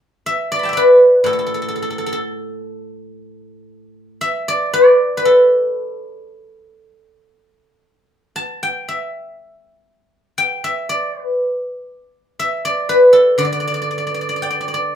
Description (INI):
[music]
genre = chinese traditional, Chinese solo plucked strings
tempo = 59 BPM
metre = 2/4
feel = rubato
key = D zhi mode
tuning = A4 = 440 Hz
[part]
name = guzheng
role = solo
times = 0.3-15.0 s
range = A2 to D6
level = -14 LUFS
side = equal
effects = none
[sound]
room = moderate studio reverb, RT60 0.6 s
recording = band playing live in one room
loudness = -14 LUFS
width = side -9 dB against mid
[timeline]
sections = 0.0-15.0 A section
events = none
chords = none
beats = 0.26 | 1.26 2.23 | 3.22 4.22 | 5.24 6.26 | 7.31 8.36 | 9.38 10.39 | 11.39 12.38 | 13.39 14.42